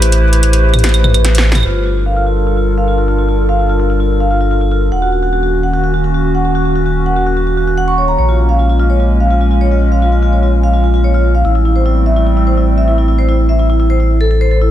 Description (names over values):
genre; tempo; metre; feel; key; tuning
IDM; 147 BPM; 4/4; straight; unclear; A4 = 439 Hz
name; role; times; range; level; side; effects
warbly tape-like pad; sustained chords; 0.0-14.7 s; Eb3 to C5; -17 LUFS; equal; chorus, built-in reverb
warm sub bass; bass; 0.0-14.7 s; Eb1 to Bb1; -13 LUFS; equal; tube saturation
electro analog drum machine; drums; 0.0-1.7 s; claves, hi-hat, snare drum, toms; -16 LUFS; right 1 dB; tape echo
vibraphone with medium mallets; arpeggios; 1.7-14.7 s; E4 to Db6; -17 LUFS; equal; low-pass filter, digital delay
room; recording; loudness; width
light reverb; dense, heavily limited modern master; -10 LUFS; side -12 dB against mid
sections
0.0-1.7 A section; 1.7-14.7 B section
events
drum fill 1.2-1.7; filter sweep on vibraphone 1.7-14.7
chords
0.0 Am7; 1.7 Gm7; 4.9 Ebm7; 8.2 Bbm7; 11.4 Am7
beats
| 0.02 0.43 0.84 1.25 | 1.65 2.06 2.47 2.88 | 3.29 3.69 4.10 4.51 | 4.92 5.33 5.74 6.14 | 6.55 6.96 7.37 7.78 | 8.19 8.59 9.00 9.41 | 9.82 10.23 10.63 11.04 | 11.45 11.86 12.27 12.68 | 13.08 13.49 13.90 14.31